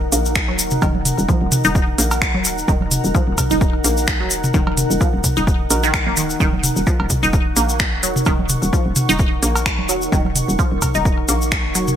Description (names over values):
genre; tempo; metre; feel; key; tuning
minimal techno; 129 BPM; 4/4; swing 55% on 16ths; Eb minor; A4 = 440 Hz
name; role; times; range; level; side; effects
hollow knocking FM bass; bass; 0.0-11.9 s; Eb1 to Bb1; -23 LUFS; equal; sidechain pumping
deep dark ambient pad; texture; 0.0-12.0 s; Eb4 to Db6; -25 LUFS; equal; chorus, built-in reverb, sidechain pumping
resonant blip pluck; riff; 0.1-11.8 s; Eb3 to Eb4; -23 LUFS; right 1 dB; phaser, sidechain pumping, digital delay
minimal click drum kit; drums; 0.1-11.9 s; finger snaps, hi-hat; -20 LUFS; right 1 dB; gated reverb
tube shaker; percussion; 0.1-12.0 s; none; -24 LUFS; left 4 dB; none
electronic kick drum; drums; 0.4-11.6 s; none; -19 LUFS; equal; none
electronic toms, cowbell and congas; percussion; 0.7-12.0 s; none; -23 LUFS; right 1 dB; gated reverb, ping-pong delay
wavetable chord stab; stabs; 5.7-5.8 s; Eb4 to Bb4; -26 LUFS; right 5 dB; none
room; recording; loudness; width
light reverb; bright 1980s-style digital production; -15 LUFS; side -9 dB against mid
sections
0.0-12.0 A section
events
none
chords
0.0 Ebm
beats
0.36 | 0.82 1.29 1.75 2.22 | 2.68 3.15 3.61 4.08 | 4.54 5.01 5.47 5.94 | 6.40 6.87 7.33 7.80 | 8.26 8.73 9.19 9.66 | 10.12 10.59 11.05 11.52